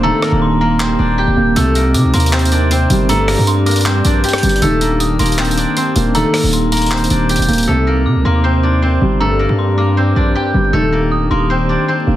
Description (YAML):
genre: hip hop, trap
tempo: 157 BPM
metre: 4/4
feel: half-time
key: unclear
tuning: A4 = 440 Hz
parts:
  - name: steel-string zither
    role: melody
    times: 0.0-12.2 s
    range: A3 to G5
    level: -18 LUFS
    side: left 1 dB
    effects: low-pass filter
  - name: dark detuned synth bell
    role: second line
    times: 0.0-11.8 s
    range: Bb5 to Eb6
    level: -24 LUFS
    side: equal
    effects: chorus, phaser, digital delay
  - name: felt-muted upright piano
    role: accompaniment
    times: 0.0-12.2 s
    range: G2 to Bb3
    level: -18 LUFS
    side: right 1 dB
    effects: low-pass filter
  - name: hollow soft pad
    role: sustained chords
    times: 0.0-12.2 s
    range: C3 to D5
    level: -22 LUFS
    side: left 1 dB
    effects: chorus
  - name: distorted 808-style bass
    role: bass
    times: 0.0-12.2 s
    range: Eb1 to C3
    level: -16 LUFS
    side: equal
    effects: distortion
  - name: breakbeat sampler-style drum kit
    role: drums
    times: 0.2-7.7 s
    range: handclaps, hi-hat, rim click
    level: -20 LUFS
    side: right 1 dB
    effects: soft clipping on snare
room: little or no reverb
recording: dense, heavily limited modern master, vinyl crackle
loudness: -11 LUFS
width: side -13 dB against mid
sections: 0.0-7.7 A section; 7.7-12.2 B section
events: break 0.0-1.6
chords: 0.0 Ebmaj7; 1.6 Cm7; 3.1 Gm; 4.6 Ebmaj7; 7.7 Cm7; 9.2 Gm; 10.7 Ebmaj7